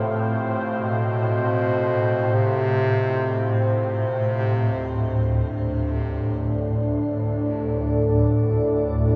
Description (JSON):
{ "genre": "ambient", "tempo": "free time", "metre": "none", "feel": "none", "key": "unclear", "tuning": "A4 = 439 Hz", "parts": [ { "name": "deep dark ambient pad", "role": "sustained chords", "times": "0.0-9.2 s", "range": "D4 to G5", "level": "-28 LUFS", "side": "equal", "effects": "chorus, built-in reverb, shimmer reverb" }, { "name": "carillon bells", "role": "arpeggios", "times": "0.0-4.5 s", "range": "A3", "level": "-37 LUFS", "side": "equal", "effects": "none" }, { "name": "swarming drone", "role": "drone", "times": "0.0-9.2 s", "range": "D2 to A2", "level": "-25 LUFS", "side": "equal", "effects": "built-in reverb" }, { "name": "clear bass clarinet", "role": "melody", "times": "0.8-3.9 s", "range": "B2 to C3", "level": "-30 LUFS", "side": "equal", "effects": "shimmer reverb, delay" } ], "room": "wet huge ambient reverb, RT60 9.0 s", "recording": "in a vast, echoing space", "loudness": "-22 LUFS", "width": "mono", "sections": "0.0-4.4 A section; 4.4-9.2 B section", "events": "none", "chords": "0.0 Fadd9; 4.4 D5", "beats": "free time" }